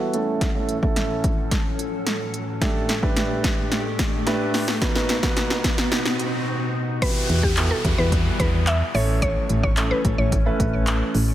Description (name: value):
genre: dance-pop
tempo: 109 BPM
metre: 4/4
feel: straight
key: E minor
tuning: A4 = 440 Hz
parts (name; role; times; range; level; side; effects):
- warm concert grand piano; accompaniment; 0.0-11.1 s; A3 to C#5; -26 LUFS; right 3 dB; sidechain pumping, low-pass filter
- glassy FM pad; sustained chords; 0.0-11.3 s; E2 to F#5; -29 LUFS; left 2 dB; ensemble chorus, built-in reverb, sidechain pumping, low-pass filter
- riser and downlifter; sound effects; 1.5-11.3 s; none; -32 LUFS; right 1 dB; none
- deep house drum kit; drums; 0.1-11.3 s; crash cymbal, handclaps, hi-hat, kick drum, snare drum; -23 LUFS; equal; none
- mallet-like synth pluck; melody; 7.0-10.6 s; G4 to E5; -27 LUFS; equal; chorus, tape echo
- solid FM bass; bass; 7.3-11.3 s; A1 to E2; -22 LUFS; equal; sidechain pumping
room: light reverb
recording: none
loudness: -19 LUFS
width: side -13 dB against mid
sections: 0.0-7.0 A section; 7.0-11.3 B section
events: build-up 0.0-7.0; drum fill 0.0-6.5; filter sweep 0.0-7.0; riser 1.5-7.0; break 6.5-7.0; drop 7.0-11.3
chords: 0.1 A; 2.6 Dsus4/A; 4.8 B; 7.0 Emadd9; 8.9 A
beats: | 0.41 0.96 1.51 2.06 | 2.62 3.17 3.72 4.27 | 4.82 5.37 5.92 6.47 | 7.02 7.57 8.12 8.67 | 9.22 9.77 10.32 10.87